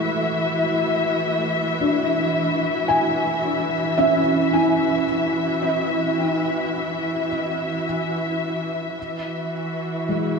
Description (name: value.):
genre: ambient.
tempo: 55 BPM.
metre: 3/4.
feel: straight.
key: E mixolydian.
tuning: A4 = 439 Hz.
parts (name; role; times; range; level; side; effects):
muted studio string section; sustained chords; 0.0-10.4 s; E3 to E5; -22 LUFS; left 1 dB; none.
felt-muted upright piano; arpeggios; 0.0-10.4 s; G#3 to G#5; -23 LUFS; equal; ensemble chorus, tape echo.
room: wet plate reverb, RT60 2.4 s.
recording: dreamy mix soaked in reverb, cassette tape.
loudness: -20 LUFS.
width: side -4 dB against mid.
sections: 0.0-9.0 A section; 9.0-10.4 B section.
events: none.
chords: 0.0 E7sus4; 9.0 Eadd9.